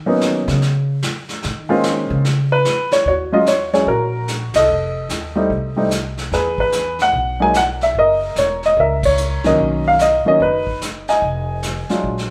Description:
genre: jazz piano trio.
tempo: 147 BPM.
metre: 4/4.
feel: swing 65% on 8ths.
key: Eb minor from 3.1 s.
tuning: A4 = 440 Hz.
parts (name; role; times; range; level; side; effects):
upright bass; bass; 0.0-12.3 s; Fb1 to D#3; -25 LUFS; equal; none.
warm upright piano; melody; 0.1-12.3 s; Eb3 to G#5; -18 LUFS; equal; none.
vintage brush drum kit; drums; 0.2-12.3 s; brushed snare drum, hi-hat, kick drum, ride cymbal, snare drum; -29 LUFS; equal; none.
room: moderate large studio reverb, RT60 0.9 s.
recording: band playing live in one room.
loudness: -17 LUFS.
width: mono.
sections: 0.0-3.1 A section; 3.1-12.3 B section.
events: upright bass solo 0.0-3.1; band accent 4.5, 9.0.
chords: 0.0 Bmaj7; 2.2 Bsus2/C#; 3.1 Ebm11; 4.7 F7; 6.3 Eadd9; 8.0 Gb7; 9.6 Bmaj9; 11.2 Fm7.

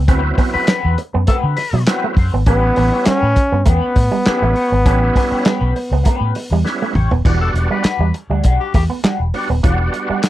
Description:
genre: funk.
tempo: 100 BPM.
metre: 4/4.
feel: straight.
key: E dorian.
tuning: A4 = 440 Hz.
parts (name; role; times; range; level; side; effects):
electric guitar with an envelope filter; riff; 0.0-10.2 s; E3 to C#4; -23 LUFS; right 6 dB; none.
vintage muted fingered electric bass; bass; 0.0-10.1 s; D#1 to D3; -16 LUFS; equal; none.
electric guitar through a small old amp; accompaniment; 0.1-10.3 s; G3 to C#5; -25 LUFS; left 5 dB; wah, analog chorus.
overdriven tonewheel organ; stabs; 0.1-10.2 s; F#3 to F#4; -21 LUFS; right 2 dB; chorus vibrato, fast rotary speaker.
warm soul drum kit; drums; 0.1-10.3 s; crash cymbal, handclaps, hi-hat, kick drum, snare drum, toms; -16 LUFS; equal; none.
raspy tenor saxophone; second line; 0.5-1.8, 7.4-8.8 s; G4 to B4; -21 LUFS; left 5 dB; none.
warm trombone; melody; 2.5-6.7 s; B3 to C#4; -18 LUFS; equal; none.
room: little or no reverb.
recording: dry, close 1970s-style studio recording.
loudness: -13 LUFS.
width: side -14 dB against mid.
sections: 0.0-7.2 A section; 7.2-10.3 B section.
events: drum fill 6.7-7.2.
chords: 0.1 D13; 2.5 A9; 7.2 Em9.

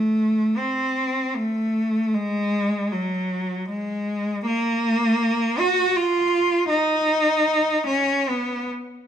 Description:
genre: classical, free, expressive piece for unaccompanied cello.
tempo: 72-82 BPM.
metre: 3/4.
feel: rubato.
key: Eb minor.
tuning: A4 = 440 Hz.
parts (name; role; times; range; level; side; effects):
rich cello; solo; 0.0-8.7 s; Gb3 to Gb4; -20 LUFS; equal; none.
room: moderate recital hall reverb, RT60 1.4 s.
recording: close, detailed microphones.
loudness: -20 LUFS.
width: side -9 dB against mid.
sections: 0.0-9.1 A section.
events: none.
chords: none.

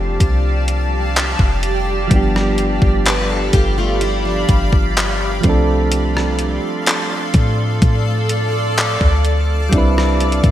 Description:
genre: contemporary R&B.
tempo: 63 BPM.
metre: 4/4.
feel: straight.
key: D dorian.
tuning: A4 = 438 Hz.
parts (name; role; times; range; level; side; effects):
soft electric-piano-like synth keys; accompaniment; 0.0-10.5 s; F3 to B4; -22 LUFS; right 3 dB; chorus.
granular cloud pad; sustained chords; 0.0-10.5 s; G4 to D6; -21 LUFS; equal; built-in reverb, wide subtle chorus.
clean 808-style bass; bass; 0.0-10.5 s; F1 to A2; -18 LUFS; equal; none.
crisp 8-bit digital drum machine; drums; 0.2-10.5 s; handclaps, hi-hat, kick drum, rim click; -17 LUFS; equal; overdrive, gated reverb.
picked plugged-in steel-string acoustic guitar; arpeggios; 3.1-5.4 s; F3 to B4; -23 LUFS; left 2 dB; lush chorus, digital delay.
room: moderate lush hall reverb, RT60 2.6 s.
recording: bright 1980s-style digital production.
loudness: -14 LUFS.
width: side -12 dB against mid.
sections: 0.0-10.5 A section.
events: none.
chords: 0.0 F69; 2.1 G7; 5.4 Dm7; 9.7 Cmaj9.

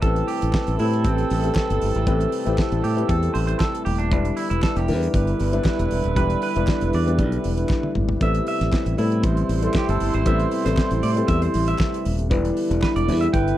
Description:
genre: disco.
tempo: 117 BPM.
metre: 4/4.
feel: straight.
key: A minor.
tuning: A4 = 440 Hz.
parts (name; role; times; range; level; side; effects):
clean electric guitar; accompaniment; 0.0-13.6 s; C4 to G5; -29 LUFS; right 4 dB; none.
warm concert grand piano; accompaniment; 0.0-13.6 s; G3 to B4; -27 LUFS; left 4 dB; none.
mellow French horn section; sustained chords; 0.0-13.6 s; C3 to B4; -27 LUFS; left 1 dB; stereo widening.
mellow horn section; stabs; 0.0-13.6 s; E3 to C5; -28 LUFS; right 6 dB; none.
modern bright fingered electric bass; bass; 0.0-13.5 s; D#1 to A2; -22 LUFS; equal; none.
damped 70s drum kit; drums; 0.0-13.6 s; hi-hat, kick drum, snare drum, toms; -24 LUFS; equal; none.
group handclap; percussion; 0.5-12.9 s; none; -40 LUFS; left 3 dB; none.
room: little or no reverb.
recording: dry, close 1970s-style studio recording.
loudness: -19 LUFS.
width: side -13 dB against mid.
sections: 0.0-13.6 A section.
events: clean electric guitar solo 0.0-13.6; drum fill 7.7-8.2.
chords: 0.0 Am9; 4.1 Em7; 8.2 Am9; 12.3 Em7.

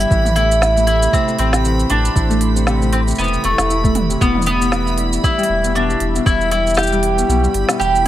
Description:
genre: folktronica.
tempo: 117 BPM.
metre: 4/4.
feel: swing 56% on 16ths.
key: A minor.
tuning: A4 = 438 Hz.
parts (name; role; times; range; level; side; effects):
mandolin; melody; 0.0-8.1 s; A3 to G4; -18 LUFS; right 1 dB; tape echo.
warm analog pad; sustained chords; 0.0-8.1 s; G3 to G5; -28 LUFS; equal; chorus.
Celtic harp; arpeggios; 0.0-8.1 s; G2 to G4; -21 LUFS; left 2 dB; tape echo.
warm sub bass; bass; 0.0-8.1 s; E1 to B1; -19 LUFS; equal; none.
organic electronic drum kit; drums; 0.0-8.1 s; hi-hat, shaker, snare drum, toms; -23 LUFS; right 1 dB; overdrive.
backwards swelling texture; texture; 0.0-8.1 s; B5; -29 LUFS; right 1 dB; built-in reverb.
electronic kick drum; drums; 0.1-6.4 s; none; -17 LUFS; equal; overdrive.
room: light reverb, digital ambience.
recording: vinyl crackle.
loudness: -13 LUFS.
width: side -12 dB against mid.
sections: 0.0-8.1 A section.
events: kick drops out 7.8.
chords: 0.1 Am; 4.2 Em.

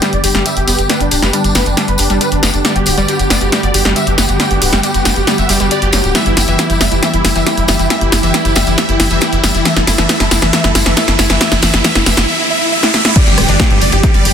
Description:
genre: uplifting trance.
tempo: 137 BPM.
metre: 4/4.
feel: straight.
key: G major.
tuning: A4 = 440 Hz.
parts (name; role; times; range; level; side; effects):
supersaw chords; melody; 0.0-14.3 s; D4 to G5; -17 LUFS; right 1 dB; phaser, sidechain pumping, low-pass filter, ping-pong delay.
analog string pad; sustained chords; 0.0-14.3 s; D3 to A4; -20 LUFS; equal; ensemble chorus, sidechain pumping.
wide unison pluck; arpeggios; 0.0-14.2 s; G2 to G4; -20 LUFS; left 2 dB; sidechain pumping, ping-pong delay.
punchy analog drum machine; drums; 0.0-14.3 s; crash cymbal, hi-hat, rim click, snare drum; -15 LUFS; equal; sidechain pumping on hats, sidechain pumping on cymbals.
tambourine; percussion; 0.0-12.3 s; none; -22 LUFS; left 4 dB; none.
tight sequencer bass; bass; 0.1-14.3 s; D1 to G1; -16 LUFS; equal; sidechain pumping.
riser and downlifter; sound effects; 8.7-14.3 s; none; -20 LUFS; equal; none.
electronic kick drum; drums; 13.2-14.1 s; none; -11 LUFS; equal; none.
room: light reverb.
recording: dense, heavily limited modern master.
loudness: -10 LUFS.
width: side -8 dB against mid.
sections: 0.0-13.2 A section; 13.2-14.3 B section.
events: build-up 0.0-13.2; drum fill 0.0-12.3, 12.8-13.2; filter sweep on supersaw synth 0.0-13.2; riser 8.7-13.2; drop 13.2-14.3.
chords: 0.0 G; 6.2 Em/G; 13.2 G.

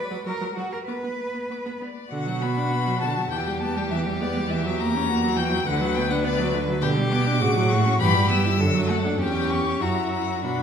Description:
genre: quick classical-period movement for string quartet.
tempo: 93-105 BPM.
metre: 2/4.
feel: rubato.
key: B minor.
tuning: A4 = 440 Hz.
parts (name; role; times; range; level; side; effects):
rich violin; second line; 0.0-10.6 s; F#4 to B4; -28 LUFS; left 4 dB; none.
clear cello; bass; 0.0-10.6 s; D2 to B4; -26 LUFS; right 3 dB; none.
rich violin; melody; 0.1-10.6 s; D5 to E6; -28 LUFS; left 6 dB; none.
clear viola; accompaniment; 0.1-10.6 s; C#3 to E4; -27 LUFS; right 2 dB; none.
room: wet recital hall reverb, RT60 1.3 s.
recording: heard from further back in the room.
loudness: -21 LUFS.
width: side -7 dB against mid.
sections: 0.0-2.1 A section; 2.1-10.6 B section.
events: none.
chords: 0.3 F#; 0.9 Bm; 3.3 Em; 4.5 F#7/E; 5.7 Bm/D; 6.8 G/B; 7.4 F#m/A; 8.0 Em/G; 8.6 D/F#; 9.2 C#dim/E; 9.8 F#7.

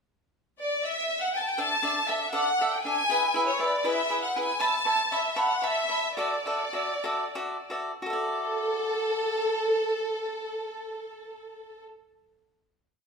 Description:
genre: mexican folk, mariachi.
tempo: 56-80 BPM (dotted quarters).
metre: 6/8.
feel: straight.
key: D major.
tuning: A4 = 440 Hz.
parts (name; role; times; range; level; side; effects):
rich studio violin section; melody; 0.6-11.8 s; A4 to A5; -27 LUFS; equal; none.
cavaquinho; accompaniment; 1.6-11.9 s; D4 to B5; -29 LUFS; equal; none.
room: wet large studio reverb, RT60 1.1 s.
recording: band playing live in one room, lossy compression artefacts.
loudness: -25 LUFS.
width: side -5 dB against mid.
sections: 0.1-1.6 pickup bar; 1.6-8.0 A section; 8.0-12.3 final chord.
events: slowing down 4.6-8.0.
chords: 0.1 N.C.; 1.6 Dsus2; 3.1 E; 4.6 Aadd9; 6.2 Dadd9.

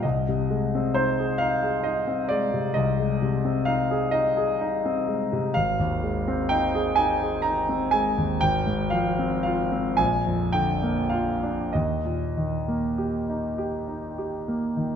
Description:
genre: classical, romantic nocturne for solo piano.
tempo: 32-45 BPM (dotted quarters).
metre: 12/8.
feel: rubato.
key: unclear.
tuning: A4 = 441 Hz.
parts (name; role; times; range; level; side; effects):
clear concert grand piano; solo; 0.0-15.0 s; Ab1 to Bb5; -22 LUFS; equal; none.
room: moderate concert hall reverb, RT60 1.9 s.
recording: none.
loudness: -22 LUFS.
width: side -8 dB against mid.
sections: 0.0-15.0 A section.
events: none.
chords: 0.0 Ab/C; 5.5 Ab; 8.4 Fm/Ab; 10.0 Bb; 11.7 Eb.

